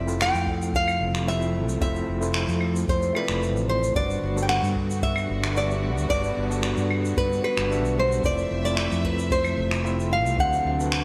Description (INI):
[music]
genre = sunset chillout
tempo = 112 BPM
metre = 4/4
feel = straight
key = unclear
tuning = A4 = 440 Hz
[part]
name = flamenco guitar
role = melody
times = 0.0-11.0 s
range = B4 to G5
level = -29 LUFS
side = equal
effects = delay
[part]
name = overdriven tine electric piano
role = accompaniment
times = 0.0-11.0 s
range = G3 to E5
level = -32 LUFS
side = equal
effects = fast tremolo, delay
[part]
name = dark studio string section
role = sustained chords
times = 0.0-11.0 s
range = C3 to E5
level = -35 LUFS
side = equal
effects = none
[part]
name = fretless electric bass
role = bass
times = 0.0-11.0 s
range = F1 to G2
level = -30 LUFS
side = equal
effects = tube saturation, lush chorus
[part]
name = shaker, finger snaps and claves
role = drums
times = 0.1-11.0 s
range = none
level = -34 LUFS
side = equal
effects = gated reverb
[part]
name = electronic kick drum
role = drums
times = 0.5-10.5 s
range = none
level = -31 LUFS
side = equal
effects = none
[sound]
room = moderate lush hall reverb, RT60 2.2 s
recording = bright 1980s-style digital production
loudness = -24 LUFS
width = mono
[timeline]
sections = 0.0-11.0 A section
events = none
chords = 0.0 Fmaj7; 4.0 Gmaj7; 8.2 Fmaj7; 10.4 D7